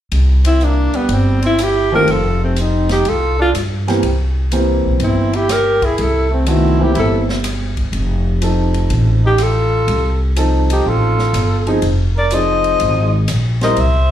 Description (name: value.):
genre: jazz, small-group swing and bop.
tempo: 123 BPM.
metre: 4/4.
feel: swing 68% on 8ths.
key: unclear.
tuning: A4 = 440 Hz.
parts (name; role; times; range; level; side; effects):
upright bass; bass; 0.1-14.1 s; F1 to G2; -16 LUFS; equal; none.
swinging big-band drum kit; drums; 0.1-13.9 s; hi-hat, kick drum, ride cymbal, rim click, snare drum; -27 LUFS; left 1 dB; none.
mellow trumpet; second line; 0.4-14.1 s; G3 to C5; -23 LUFS; right 4 dB; plate reverb, slapback echo.
breathy alto saxophone; melody; 0.5-14.1 s; B3 to E5; -17 LUFS; left 2 dB; plate reverb, slapback echo.
warm baby grand piano; accompaniment; 1.9-13.8 s; Eb3 to Bb4; -19 LUFS; right 1 dB; plate reverb, slapback echo.
room: light reverb.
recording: live gig heard through the venue's PA, club reverb.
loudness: -13 LUFS.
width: side -11 dB against mid.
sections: 0.1-14.1 A section.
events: none.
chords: 0.1 C5; 2.1 F5; 4.0 C7; 7.9 F7; 11.8 Fm7.